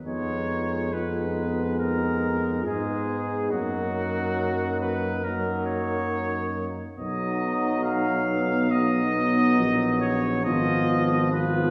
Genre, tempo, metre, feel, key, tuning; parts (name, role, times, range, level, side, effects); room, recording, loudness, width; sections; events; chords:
classical, brass quintet; 69 BPM; 4/4; straight; A4 = 439 Hz
brilliant trombone; accompaniment; 0.0-11.7 s; F3 to Ab3; -34 LUFS; equal
clear trumpet; melody; 0.1-11.7 s; Gb4 to F5; -31 LUFS; equal
warm flugelhorn; second line; 0.1-11.7 s; Eb4 to F4; -35 LUFS; equal
mellow French horn; accompaniment; 0.1-11.7 s; Bb3 to Cb4; -32 LUFS; equal
mellow bass trombone; bass; 0.1-11.7 s; Ab1 to Ab2; -31 LUFS; equal
wet scoring stage reverb, RT60 1.6 s; heard from further back in the room, studio reverb; -25 LUFS; mono
0.0-11.7 A section
0.0 Fm7b5; 3.5 Ebm/Gb; 7.0 B; 10.4 Fm7b5/Ab